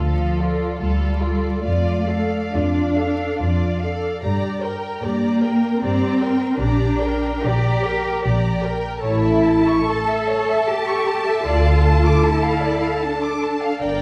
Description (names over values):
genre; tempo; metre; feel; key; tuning
classical, slow romantic movement for string orchestra; 64-78 BPM; 3/4; rubato; D minor; A4 = 439 Hz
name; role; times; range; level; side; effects
rich studio violin section; melody; 0.0-14.0 s; D5 to Bb5; -33 LUFS; equal; none
rich studio violin section; second line; 0.0-14.0 s; F4 to D6; -28 LUFS; equal; none
rich studio viola section; accompaniment; 0.0-14.0 s; F4 to Bb4; -29 LUFS; equal; none
rich studio cello section; bass; 0.0-13.8 s; F3 to A4; -24 LUFS; equal; none
rich studio double bass section; bass; 0.0-14.0 s; G1 to G2; -24 LUFS; equal; none
room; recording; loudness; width
wet recital hall reverb, RT60 1.3 s; heard from further back in the room, vinyl crackle; -20 LUFS; mono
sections
0.0-14.0 A section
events
none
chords
0.0 Dm; 1.6 Dm/F; 4.2 Gm; 6.6 Gm/Bb; 9.0 A; 11.5 Dm